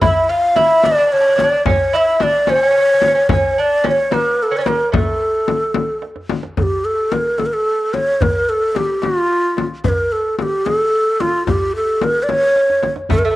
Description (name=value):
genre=Persian modal ensemble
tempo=73 BPM (dotted quarters)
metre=6/8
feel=straight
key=A dastgah homayun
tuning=A4 = 437 Hz
part: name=breathy low ney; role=melody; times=0.0-13.4 s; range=F4 to F5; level=-15 LUFS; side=equal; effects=none
part: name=lute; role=second line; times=0.0-6.0, 13.1-13.4 s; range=A3 to F4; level=-22 LUFS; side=right 5 dB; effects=cassette tape
part: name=frame drum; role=percussion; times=0.0-13.2 s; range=none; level=-21 LUFS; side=left 4 dB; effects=none
part: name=tombak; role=percussion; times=0.0-13.2 s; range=none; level=-23 LUFS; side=right 2 dB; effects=none
room=moderate spring reverb, RT60 1.6 s, small room ambience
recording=home recording on cassette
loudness=-14 LUFS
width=side -16 dB against mid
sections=0.0-6.6 A section; 6.6-13.4 B section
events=drum fill 6.0-6.6, 12.6-13.1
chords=none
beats=| 0.02 0.84 | 1.66 2.48 | 3.30 4.12 | 4.94 5.76 | 6.57 7.39 | 8.21 9.03 | 9.84 10.66 | 11.48 12.29 | 13.11